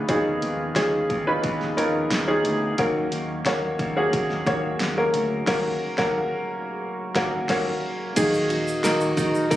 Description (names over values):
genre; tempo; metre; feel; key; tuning
piano-driven pop; 89 BPM; 4/4; straight; unclear; A4 = 439 Hz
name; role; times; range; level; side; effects
clear upright piano; accompaniment; 0.0-9.6 s; Eb3 to Db5; -23 LUFS; equal; none
tonewheel organ; sustained chords; 0.0-9.6 s; Bb2 to F4; -34 LUFS; right 1 dB; none
modern bright picked electric bass; bass; 0.0-9.6 s; D2 to Eb3; -30 LUFS; equal; none
pop drum kit; drums; 0.1-9.6 s; crash cymbal, hi-hat, kick drum, ride cymbal, snare drum; -29 LUFS; equal; none
picked steel-string acoustic guitar; riff; 8.2-9.6 s; Eb3 to Gb4; -24 LUFS; right 3 dB; none
tube shaker; percussion; 8.2-9.6 s; none; -37 LUFS; left 1 dB; none
room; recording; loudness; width
moderate studio reverb, RT60 0.9 s; recorded on a phone in the room, studio reverb; -21 LUFS; side -14 dB against mid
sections
0.0-8.2 A section; 8.2-9.6 B section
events
band accent 5.5-8.2; upright piano solo 8.2-9.6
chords
0.0 Dbadd9; 2.8 Gb; 8.2 Ebm